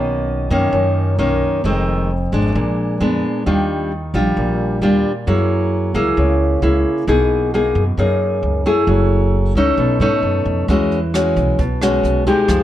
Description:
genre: bossa nova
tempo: 133 BPM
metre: 4/4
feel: straight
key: unclear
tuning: A4 = 444 Hz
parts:
  - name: nylon-string guitar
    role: accompaniment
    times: 0.0-12.6 s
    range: F2 to Ab4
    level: -16 LUFS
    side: left 1 dB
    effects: none
  - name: upright bass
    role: bass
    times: 0.0-12.6 s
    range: F1 to Ab2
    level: -19 LUFS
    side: equal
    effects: none
  - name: jazz brush drum kit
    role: drums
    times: 10.7-12.6 s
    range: hi-hat, kick drum, rim click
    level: -23 LUFS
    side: right 1 dB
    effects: none
room: light reverb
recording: dark, warm production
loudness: -14 LUFS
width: side -12 dB against mid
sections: 0.0-12.6 A section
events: none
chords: 0.0 Bmaj9; 1.6 Fm7; 2.6 Bb7b9; 3.5 Ebmaj9; 5.3 Gb9; 7.1 Bmaj13; 8.9 Gbm9; 9.8 B9; 10.7 E69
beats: 0.29 0.74 1.19 | 1.65 2.10 2.55 3.00 | 3.46 3.91 4.36 4.82 | 5.27 5.72 6.17 6.62 | 7.08 7.53 7.98 8.43 | 8.88 9.34 9.79 10.24 | 10.69 11.14 11.59 12.04 | 12.50

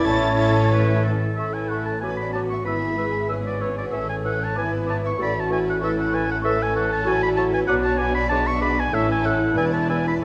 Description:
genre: quick classical-period movement for symphony orchestra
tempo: 95 BPM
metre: 2/4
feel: rubato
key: A major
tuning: A4 = 439 Hz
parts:
  - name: warm studio violin section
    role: melody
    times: 0.0-10.2 s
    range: E4 to A6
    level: -38 LUFS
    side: equal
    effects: none
  - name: clear clarinet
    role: second line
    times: 0.0-10.2 s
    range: E4 to D5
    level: -34 LUFS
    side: equal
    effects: none
  - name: clear oboe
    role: second line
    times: 0.0-10.1 s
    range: C#5 to C#6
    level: -28 LUFS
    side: equal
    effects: none
  - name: rich studio violin section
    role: second line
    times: 0.0-10.2 s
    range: E4 to E5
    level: -36 LUFS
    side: equal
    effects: none
  - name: dark bassoon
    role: accompaniment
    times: 0.0-10.2 s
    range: E3 to B3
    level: -34 LUFS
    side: equal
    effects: none
  - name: warm studio viola section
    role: accompaniment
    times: 0.0-10.2 s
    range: G#3 to E4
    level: -34 LUFS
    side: equal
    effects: none
  - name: mellow French horn section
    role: sustained chords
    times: 0.0-10.2 s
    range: A3 to B4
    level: -29 LUFS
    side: equal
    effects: none
  - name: clear trumpet section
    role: stabs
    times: 0.0-1.0 s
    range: C#5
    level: -29 LUFS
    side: equal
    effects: none
  - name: clear studio cello section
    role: bass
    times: 0.0-10.2 s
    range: E2 to B2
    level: -32 LUFS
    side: equal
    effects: none
  - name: warm studio double bass section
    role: bass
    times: 0.0-10.2 s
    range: E1 to B1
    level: -31 LUFS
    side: equal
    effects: none
  - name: mellow hollow concert flute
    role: second line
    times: 0.1-10.0 s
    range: A5 to E6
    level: -36 LUFS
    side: equal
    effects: none
room: wet scoring stage reverb, RT60 1.9 s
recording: worn, warbling old tape, cassette tape, warbly pitch drift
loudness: -22 LUFS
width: mono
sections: 0.0-1.4 A section; 1.4-10.2 A section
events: none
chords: 0.0 A; 2.0 Bm7/A; 2.7 E/G#; 3.9 A; 4.6 E/G#; 5.2 A; 7.7 Bm; 8.3 G#dim/B; 8.9 A; 9.6 E5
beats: | 0.05 0.72 | 1.38 2.02 | 2.66 3.29 | 3.93 4.56 | 5.19 5.81 | 6.43 7.05 | 7.67 8.30 | 8.93 9.56 | 10.22

